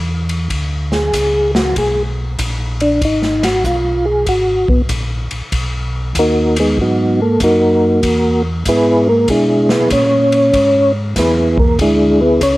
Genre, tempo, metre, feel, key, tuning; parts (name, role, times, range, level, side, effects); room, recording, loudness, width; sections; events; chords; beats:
soul jazz organ trio; 96 BPM; 4/4; swing 66% on 8ths; A4 = 440 Hz
mellow tonewheel organ; bass; 0.0-12.6 s; G#1 to B2; -20 LUFS; equal; slow rotary speaker
swinging big-band drum kit; drums; 0.3-12.6 s; hi-hat, kick drum, ride cymbal, snare drum; -21 LUFS; equal; cassette tape
percussive tonewheel organ; melody; 0.9-12.6 s; F#3 to C#5; -12 LUFS; equal; chorus vibrato, slow rotary speaker, cassette tape, plate reverb
moderate studio reverb, RT60 0.5 s; home recording on cassette; -12 LUFS; side -18 dB against mid
0.0-12.6 A section
tonewheel organ solo 0.0-12.6
0.0 N.C.; 0.5 A#7#9; 3.0 G#m9; 8.0 E7
| 0.51 1.13 1.76 2.39 | 3.02 3.65 4.27 4.90 | 5.53 6.15 6.78 7.41 | 8.04 8.66 9.29 9.91 | 10.54 11.16 11.79 12.41